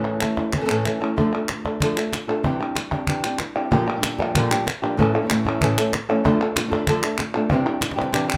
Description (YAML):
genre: flamenco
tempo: 189 BPM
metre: 4/4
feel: straight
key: A phrygian dominant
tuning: A4 = 440 Hz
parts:
  - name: flamenco guitar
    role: melody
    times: 0.0-8.4 s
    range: A2 to A4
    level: -25 LUFS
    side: equal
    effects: none
  - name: flamenco guitar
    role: stabs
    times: 0.0-8.2 s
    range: A2 to G4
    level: -29 LUFS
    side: equal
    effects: none
  - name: palmas hand claps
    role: percussion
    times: 0.0-8.4 s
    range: none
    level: -28 LUFS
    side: equal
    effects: none
  - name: cajon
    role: percussion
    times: 0.2-8.4 s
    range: none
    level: -29 LUFS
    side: equal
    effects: none
room: light reverb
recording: none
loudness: -22 LUFS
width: mono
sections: 0.0-3.7 A section; 3.7-8.4 A section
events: drum fill 7.8-8.4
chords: 0.0 A; 1.2 Dm; 2.4 Cadd9; 3.7 Bb6; 5.0 A; 6.2 Dm; 7.5 Cadd9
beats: 0.21 0.53 0.85 | 1.17 1.49 1.81 2.12 | 2.44 2.76 3.08 3.40 | 3.71 4.03 4.35 4.67 | 4.98 5.30 5.61 5.93 | 6.25 6.56 6.88 7.19 | 7.50 7.82 8.13